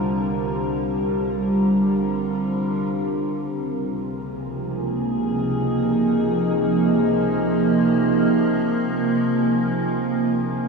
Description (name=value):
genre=ambient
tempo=free time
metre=none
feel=none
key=unclear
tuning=A4 = 441 Hz
part: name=evolving wavetable pad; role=sustained chords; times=0.0-10.7 s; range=Db2 to Bb4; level=-19 LUFS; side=right 1 dB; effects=chorus, built-in reverb
part: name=vibraphone with soft mallets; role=arpeggios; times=0.0-10.7 s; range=F4 to Ab5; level=-40 LUFS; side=left 2 dB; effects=none
part: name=bright studio double bass section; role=bass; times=0.0-2.9 s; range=C2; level=-32 LUFS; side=equal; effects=none
room=wet huge ambient reverb, RT60 7.5 s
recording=dreamy mix soaked in reverb, small room ambience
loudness=-19 LUFS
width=side -4 dB against mid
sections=0.0-2.9 A section; 2.9-10.7 B section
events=none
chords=0.0 Cm7; 2.9 Dbadd9